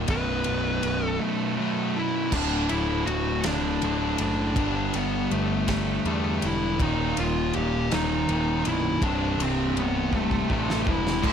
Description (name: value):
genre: quiet-loud alternative rock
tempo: 54 BPM (dotted quarters)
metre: 6/8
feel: straight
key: unclear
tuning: A4 = 438 Hz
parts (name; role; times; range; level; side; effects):
- distorted electric guitar; riff; 0.0-11.3 s; B1 to G3; -30 LUFS; left 14 dB; overdrive
- thick fuzz guitar; riff; 0.0-11.3 s; B1 to G3; -30 LUFS; right 12 dB; distortion
- fuzz picked electric bass; bass; 0.0-11.3 s; B0 to E2; -30 LUFS; equal; overdrive
- fuzz lead guitar; melody; 0.1-11.3 s; A3 to B4; -28 LUFS; left 1 dB; distortion, slapback echo
- loose indie drum kit; drums; 0.1-11.3 s; crash cymbal, kick drum, ride cymbal, snare drum; -32 LUFS; equal; none
- overdriven semi-hollow guitar; riff; 11.2-11.3 s; D2 to D3; -24 LUFS; left 1 dB; none
room: light reverb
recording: none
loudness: -23 LUFS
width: side -8 dB against mid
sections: 0.0-2.3 A section; 2.3-11.3 A section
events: drum fill 10.1-11.3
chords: 0.1 B5; 2.3 D; 4.6 G5; 6.8 D#5; 9.0 C